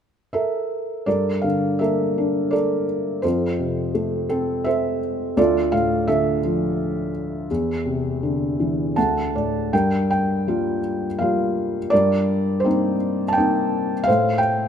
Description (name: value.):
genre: classical, lyrical solo piano.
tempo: 84 BPM.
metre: 3/4.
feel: rubato.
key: G dorian.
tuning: A4 = 437 Hz.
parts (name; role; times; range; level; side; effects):
felt-muted upright piano; solo; 0.3-14.7 s; D2 to A5; -19 LUFS; equal; none.
room: moderate recital hall reverb, RT60 1.7 s.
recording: none.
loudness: -19 LUFS.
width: side -8 dB against mid.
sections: 0.0-1.1 A section; 1.1-9.7 B section; 9.7-14.7 C section.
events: felt piano fill 8.6-9.7.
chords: 0.0 A5; 1.1 Gmadd9; 3.2 F; 5.4 Dmadd9; 7.5 Cadd9/E; 9.0 D; 9.7 Gm7; 11.9 Cm7/G; 14.1 F/A.